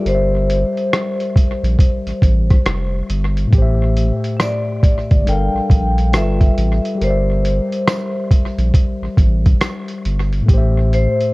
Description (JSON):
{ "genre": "lo-fi hip hop", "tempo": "69 BPM", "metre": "4/4", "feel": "swing 62% on 16ths", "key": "unclear", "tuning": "A4 = 440 Hz", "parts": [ { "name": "vibraphone with medium hard mallets", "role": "melody", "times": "0.0-11.3 s", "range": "C5 to G5", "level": "-22 LUFS", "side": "equal", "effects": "low-pass filter, tape echo" }, { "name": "mellow tine electric piano", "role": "accompaniment", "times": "0.0-11.3 s", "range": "A2 to F5", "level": "-21 LUFS", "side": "left 2 dB", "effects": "low-pass filter, tape echo" }, { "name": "saturated sub bass", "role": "bass", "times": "0.1-11.1 s", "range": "F1 to Bb1", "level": "-17 LUFS", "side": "equal", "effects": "none" }, { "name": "lo-fi sampler-style drum kit", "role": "drums", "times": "0.1-11.3 s", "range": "hi-hat, kick drum, rim click", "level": "-14 LUFS", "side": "equal", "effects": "overdrive" }, { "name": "tambourine", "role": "percussion", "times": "4.4-9.9 s", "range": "none", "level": "-41 LUFS", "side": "right 4 dB", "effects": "tape echo" } ], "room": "digital ambience", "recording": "echo-heavy mix, cassette tape", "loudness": "-14 LUFS", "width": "side -22 dB against mid", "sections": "0.0-11.3 A section", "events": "none", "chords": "0.1 C9/G; 3.5 Am7; 5.3 Gm9; 6.1 G13; 7.0 C9/G; 10.5 Am7" }